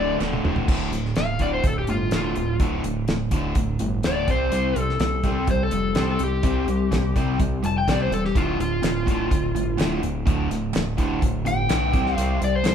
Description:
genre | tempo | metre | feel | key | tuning
classic rock | 125 BPM | 4/4 | straight | D minor | A4 = 438 Hz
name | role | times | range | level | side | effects
overdriven slide guitar | melody | 0.0-12.7 s | F4 to A5 | -26 LUFS | left 2 dB | none
crunchy overdriven guitar | riff | 0.0-0.7 s | D2 to D3 | -30 LUFS | equal | none
overdriven electric guitar | riff | 0.0-12.7 s | D2 to C4 | -25 LUFS | equal | spring reverb
fat analog bass | bass | 0.0-12.7 s | D1 to C2 | -27 LUFS | equal | none
damped 70s drum kit | drums | 0.2-12.7 s | crash cymbal, hi-hat, kick drum, snare drum, toms | -25 LUFS | equal | none
group handclap | percussion | 0.2-0.3, 8.8-12.7 s | none | -39 LUFS | right 7 dB | none
room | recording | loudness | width
moderate large studio reverb, RT60 1.2 s | band playing live in one room | -20 LUFS | side -8 dB against mid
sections
0.7-12.7 A section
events
drum fill 0.2-0.7; electric slide guitar solo 0.7-12.7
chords
0.0 D5; 0.7 Dm; 4.3 C5; 8.3 Dm; 11.9 C5

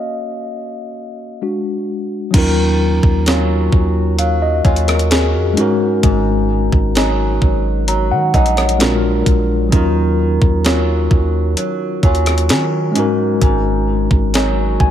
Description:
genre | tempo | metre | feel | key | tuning
contemporary R&B | 65 BPM | 4/4 | straight | Eb minor | A4 = 440 Hz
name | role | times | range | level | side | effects
mellow tine electric piano | accompaniment | 0.0-14.9 s | Gb3 to Bb5 | -18 LUFS | left 2 dB | medium stereo tremolo
flamenco guitar | arpeggios | 2.3-14.9 s | Ab2 to F4 | -20 LUFS | right 1 dB | diffuse ambient delay
long sustained 808-style bass | bass | 2.3-14.9 s | Ab1 to Eb3 | -17 LUFS | equal | none
clean 12-bit digital drum machine | drums | 2.3-14.9 s | crash cymbal, hi-hat, kick drum, rim click, snare drum | -16 LUFS | equal | none
room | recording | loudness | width
light reverb, digital ambience | none | -13 LUFS | side -10 dB against mid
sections
0.0-2.3 A section; 2.3-14.9 B section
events
tine electric piano solo 0.0-2.3; stop 0.0-2.3; tine electric piano fill 14.3-14.9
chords
0.0 Ab7sus4 (rootless); 1.4 D; 2.3 Ebm9; 5.6 Ab7sus4; 8.8 Bb7b13; 9.7 Ebm9; 13.0 Ab7sus4

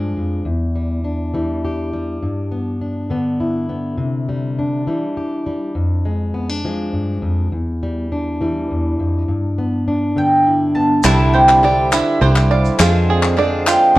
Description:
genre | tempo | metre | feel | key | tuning
indie folk with a building arrangement | 102 BPM | 3/4 | straight | C major | A4 = 440 Hz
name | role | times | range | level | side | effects
fingerpicked plugged-in steel-string acoustic guitar | accompaniment | 0.0-12.8 s | E2 to Ab4 | -19 LUFS | left 1 dB | none
mandolin | melody | 10.2-14.0 s | D5 to A5 | -15 LUFS | right 1 dB | none
picked steel-string acoustic guitar | accompaniment | 11.0-14.0 s | C3 to Ab4 | -20 LUFS | left 2 dB | none
hand-pumped harmonium | sustained chords | 11.0-14.0 s | D3 to F4 | -23 LUFS | right 2 dB | none
bluegrass banjo | arpeggios | 11.0-14.0 s | E4 to D5 | -19 LUFS | right 5 dB | none
fingered electric bass | bass | 11.0-14.0 s | C2 to F2 | -16 LUFS | equal | none
group handclap | percussion | 11.0-14.0 s | none | -22 LUFS | left 3 dB | none
tube shaker | percussion | 11.0-13.8 s | none | -27 LUFS | right 8 dB | none
room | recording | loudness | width
moderate large studio reverb, RT60 0.9 s | worn, warbling old tape, cassette tape, warbly pitch drift | -15 LUFS | side -17 dB against mid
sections
0.0-11.0 A section; 11.0-14.0 B section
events
none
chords
0.5 Em7; 2.2 G; 4.0 Cadd9; 5.8 Fm6; 7.5 Em7; 9.3 G; 11.0 Cadd9; 12.8 Fm6

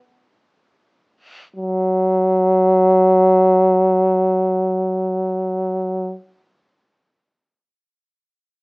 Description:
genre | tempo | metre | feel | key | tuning
classical, free, expressive piece for unaccompanied French horn | free time | none | none | unclear | A4 = 442 Hz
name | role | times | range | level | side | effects
warm French horn | solo | 1.6-6.2 s | F#3 | -14 LUFS | equal | none
room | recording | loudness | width
little or no reverb | small speaker sound | -14 LUFS | side -36 dB against mid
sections
0.0-1.5 A section; 1.5-6.1 B section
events
slowing down 0.0-1.5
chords
none

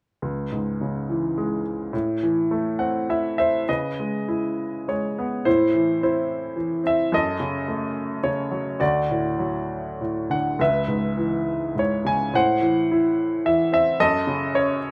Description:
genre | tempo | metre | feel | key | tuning
classical, lyrical solo piano | 98-112 BPM | 3/4 | rubato | C# minor | A4 = 441 Hz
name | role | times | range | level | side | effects
bright baby grand piano | solo | 0.2-14.9 s | C#2 to G#5 | -23 LUFS | equal | none
room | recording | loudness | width
moderate studio reverb, RT60 0.6 s | none | -23 LUFS | mono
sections
0.2-3.7 A section; 3.7-14.9 B section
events
grand piano fill 2.5-3.7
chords
0.2 C#m; 1.9 Am; 3.7 C#m7; 5.5 Am; 7.1 F#m; 8.8 D; 10.6 C#m7; 12.3 Am; 14.0 F#m

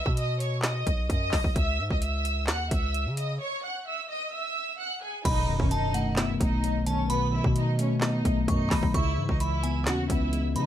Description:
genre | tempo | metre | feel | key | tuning
hip hop, trap | 130 BPM | 4/4 | half-time | unclear | A4 = 440 Hz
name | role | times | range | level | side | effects
dark studio violin section | melody | 0.0-10.7 s | B3 to F#6 | -32 LUFS | right 1 dB | plate reverb, digital delay
distorted 808-style bass | bass | 0.1-10.7 s | B1 to C#3 | -29 LUFS | equal | distortion
trap drum kit | drums | 0.1-10.7 s | crash cymbal, handclaps, hi-hat, kick drum, snare drum | -28 LUFS | equal | none
glassy synth bell | second line | 5.2-10.7 s | F#5 to C#6 | -33 LUFS | right 2 dB | chorus, digital delay
mellow tine electric piano | accompaniment | 5.2-10.7 s | B2 to C#4 | -28 LUFS | left 2 dB | slow stereo tremolo
impact | sound effects | 5.3-7.1 s | none | -37 LUFS | equal | none
room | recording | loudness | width
moderate studio ambience, RT60 0.5 s | none | -24 LUFS | side -11 dB against mid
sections
0.0-5.3 A section; 5.3-10.7 B section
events
break 0.0-5.3; impact 5.3-7.1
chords
0.0 B; 1.6 C#m; 5.3 B7; 8.9 C#m7

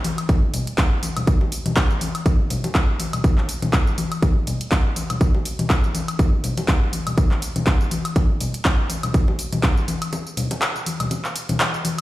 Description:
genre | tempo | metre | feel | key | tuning
house | 122 BPM | 4/4 | swing 56% on 16ths | none | none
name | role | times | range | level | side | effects
house drum kit | drums | 0.0-12.0 s | handclaps, hi-hat, tambourine, woodblock | -26 LUFS | equal | overdrive
congas | percussion | 0.0-12.0 s | none | -26 LUFS | left 2 dB | overdrive
electronic kick drum | drums | 0.3-9.7 s | none | -18 LUFS | equal | overdrive
room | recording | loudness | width
little or no reverb | played on a big sound system in a bare room, stone room reverb | -18 LUFS | side -16 dB against mid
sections
0.0-12.0 A section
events
break 10.1-12.0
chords
none

